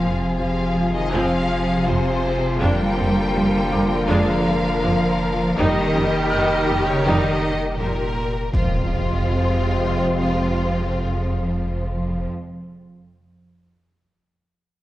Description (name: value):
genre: cinematic, hybrid orchestral and electronic film score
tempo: 81 BPM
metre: 4/4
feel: straight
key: F minor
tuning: A4 = 440 Hz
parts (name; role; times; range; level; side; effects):
- warm studio violin section; melody; 0.0-12.3 s; F4 to G5; -28 LUFS; left 3 dB; none
- dark symphonic violin section; second line; 0.0-12.3 s; C4 to Bb4; -27 LUFS; left 2 dB; none
- warm symphonic viola section; accompaniment; 0.0-12.3 s; F3 to Eb4; -28 LUFS; right 1 dB; none
- mellow French horn section; sustained chords; 0.0-12.3 s; Bb3 to G4; -29 LUFS; left 2 dB; none
- mellow trombone section; sustained chords; 0.0-12.3 s; C3 to Ab3; -28 LUFS; right 2 dB; none
- rich symphonic cello section; bass; 0.0-12.3 s; Bb2 to G3; -24 LUFS; right 1 dB; none
- sub bass with octave; bass; 0.0-12.3 s; F1; -29 LUFS; equal; none
- warm symphonic double bass section; bass; 0.0-12.3 s; F2; -25 LUFS; right 2 dB; none
- warm baby grand piano; texture; 0.0-8.6 s; F5 to F6; -33 LUFS; equal; none
- impact; sound effects; 8.5-12.9 s; none; -25 LUFS; equal; none
room: moderate scoring stage reverb, RT60 1.8 s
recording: worn, warbling old tape, cassette tape, warbly pitch drift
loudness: -18 LUFS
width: side -15 dB against mid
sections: 0.0-8.5 A section; 8.5-11.5 B section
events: impact 8.5-11.5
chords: 0.0 Fm; 2.6 Bb7/F; 5.6 Eb/F; 8.5 Fm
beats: 0.39 1.13 1.87 | 2.61 3.35 4.09 4.83 | 5.57 6.31 7.05 7.79 | 8.54 9.28 10.02 10.76